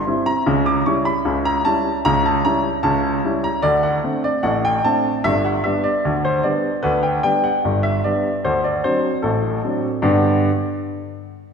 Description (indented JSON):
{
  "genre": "ragtime piano",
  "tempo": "75 BPM",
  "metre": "2/4",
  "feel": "straight",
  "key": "G major",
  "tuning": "A4 = 445 Hz",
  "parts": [
    { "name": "clear grand piano", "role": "solo", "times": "0.0-10.5 s", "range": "G1 to D6", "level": "-17 LUFS", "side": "equal", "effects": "none" }
  ],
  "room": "wet scoring stage reverb, RT60 2.0 s",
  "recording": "recorded in a church or concert hall",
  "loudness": "-16 LUFS",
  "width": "side -6 dB against mid",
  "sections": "0.0-10.0 A section; 10.0-11.5 B section",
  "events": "none",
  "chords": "0.5 C#dim; 3.6 D5; 5.2 G; 8.4 D7; 10.0 G"
}